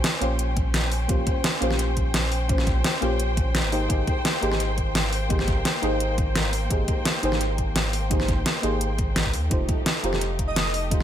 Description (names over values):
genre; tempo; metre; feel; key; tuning
liquid drum and bass; 171 BPM; 4/4; straight; Bb dorian; A4 = 440 Hz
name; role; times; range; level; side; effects
deep mellow chord stab; accompaniment; 0.0-11.0 s; A3 to C5; -29 LUFS; equal; chorus, ping-pong delay
warm studio string section; sustained chords; 0.0-11.0 s; A3 to G5; -31 LUFS; left 1 dB; sidechain pumping
warm sub bass; bass; 0.0-11.0 s; F1 to Eb2; -26 LUFS; equal; none
pop drum kit; drums; 0.0-11.0 s; hi-hat, snare drum; -26 LUFS; equal; overdrive
electronic kick drum; drums; 0.6-11.0 s; none; -25 LUFS; equal; none
airy dreamy lead; melody; 10.5-10.8 s; Eb5; -28 LUFS; equal; chorus
room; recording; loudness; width
light reverb; none; -21 LUFS; side -10 dB against mid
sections
0.0-11.0 A section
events
none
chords
0.0 Bbm69; 3.7 Abmaj9; 9.5 F9